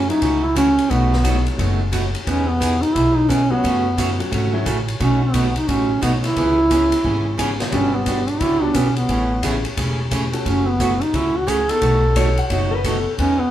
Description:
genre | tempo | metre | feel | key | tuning
country, western swing | 176 BPM | 4/4 | swing 63% on 8ths | unclear | A4 = 441 Hz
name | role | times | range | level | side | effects
mellow duduk | melody | 0.0-13.5 s | B3 to A4 | -18 LUFS | right 1 dB | none
upright bass | bass | 0.0-13.5 s | E1 to F#2 | -22 LUFS | equal | none
bright upright piano | accompaniment | 0.1-13.0 s | F#3 to A4 | -28 LUFS | left 2 dB | none
swinging big-band drum kit | drums | 0.1-13.3 s | hi-hat, kick drum, ride cymbal, snare drum | -26 LUFS | left 1 dB | none
picked steel-string acoustic guitar | accompaniment | 0.2-13.4 s | B2 to G#4 | -25 LUFS | right 4 dB | none
clean lap steel guitar | second line | 12.2-13.1 s | A4 to F#5 | -24 LUFS | left 4 dB | none
room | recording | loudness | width
moderate large studio reverb, RT60 0.8 s | band playing live in one room | -16 LUFS | side -12 dB against mid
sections
0.0-13.5 A section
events
none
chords
0.0 F#m7; 0.9 B7; 2.3 Emaj7; 3.6 F#m; 5.0 B7; 6.4 C#m7; 7.7 Gmaj7; 9.1 Amaj7; 10.5 F#m; 11.8 B7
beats
0.22 0.56 | 0.90 1.24 1.58 1.93 | 2.27 2.61 2.95 3.29 | 3.63 3.97 4.32 4.66 | 5.00 5.34 5.68 6.02 | 6.36 6.71 7.05 7.39 | 7.73 8.07 8.41 8.75 | 9.09 9.44 9.78 10.12 | 10.46 10.80 11.14 11.48 | 11.82 12.16 12.50 12.84 | 13.18

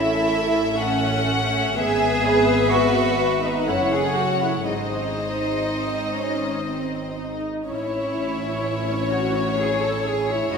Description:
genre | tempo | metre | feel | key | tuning
classical, slow romantic movement for string orchestra | 62 BPM | 3/4 | uneven beats, rubato | unclear | A4 = 440 Hz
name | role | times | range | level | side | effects
warm symphonic violin section | melody | 0.0-10.6 s | C#5 to F#5 | -28 LUFS | left 6 dB | none
warm symphonic violin section | second line | 0.0-10.6 s | B4 to F#5 | -26 LUFS | left 3 dB | none
dark symphonic viola section | accompaniment | 0.0-10.6 s | B3 to B4 | -27 LUFS | left 2 dB | none
rich symphonic cello section | bass | 0.0-10.6 s | C#4 to A4 | -24 LUFS | right 4 dB | none
warm symphonic double bass section | bass | 0.0-10.6 s | F#1 to A1 | -29 LUFS | right 2 dB | none
room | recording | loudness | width
wet concert hall reverb, RT60 2.1 s | minimal, uncompressed stereo recording | -20 LUFS | side -6 dB against mid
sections
0.0-10.6 A section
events
none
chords
0.0 A; 1.8 E/G#; 3.7 F#m; 4.7 G#; 7.7 A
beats
0.78 | 1.78 2.73 3.68 | 4.67 5.67 6.67 | 7.68 8.65 9.59 | 10.54

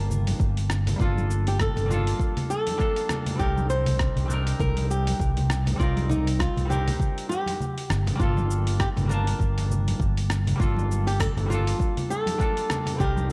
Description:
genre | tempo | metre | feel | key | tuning
sunset chillout | 100 BPM | 4/4 | swing 57% on 16ths | G minor | A4 = 440 Hz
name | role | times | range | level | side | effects
flamenco guitar | melody | 0.0-13.3 s | Eb4 to C5 | -32 LUFS | equal | digital delay
semi-hollow electric guitar | accompaniment | 0.0-13.3 s | G3 to A5 | -36 LUFS | equal | delay
fretless electric bass | bass | 0.0-13.3 s | G1 to C2 | -27 LUFS | equal | tube saturation
dusty soul sampler-style drum kit | drums | 0.1-13.3 s | cabasa, congas, hi-hat, rim click | -34 LUFS | equal | none
congas | percussion | 0.3-13.3 s | none | -37 LUFS | equal | none
electronic kick drum | drums | 0.4-13.1 s | none | -29 LUFS | equal | overdrive
room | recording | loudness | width
light reverb | dark, warm production | -25 LUFS | mono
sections
0.0-13.3 A section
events
kick drops out 7.6-8.2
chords
0.0 Gm9; 3.4 Cm9; 8.2 Gm9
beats
0.40 | 1.00 1.60 2.20 2.80 | 3.40 4.00 4.60 5.20 | 5.80 6.40 7.00 7.60 | 8.20 8.80 9.40 10.00 | 10.60 11.20 11.80 12.40 | 13.00

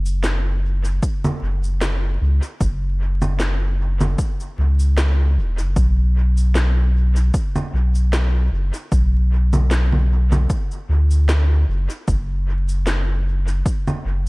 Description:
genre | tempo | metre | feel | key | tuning
ambient dub | 76 BPM | 4/4 | swing 55% on 16ths | unclear | A4 = 439 Hz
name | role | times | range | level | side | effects
warm sub bass | bass | 0.0-14.3 s | E1 to D2 | -17 LUFS | equal | none
electronic shaker, snare drum and congas | drums | 0.1-14.0 s | none | -25 LUFS | equal | dub echo
electronic kick drum | drums | 1.0-13.8 s | none | -21 LUFS | equal | overdrive
room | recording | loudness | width
little or no reverb | vinyl crackle | -17 LUFS | side -25 dB against mid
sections
0.0-14.3 A section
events
none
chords
none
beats
0.24 1.03 1.82 | 2.60 3.40 4.18 4.97 | 5.76 6.55 7.34 8.13 | 8.92 9.71 10.50 11.29 | 12.08 12.87 13.66

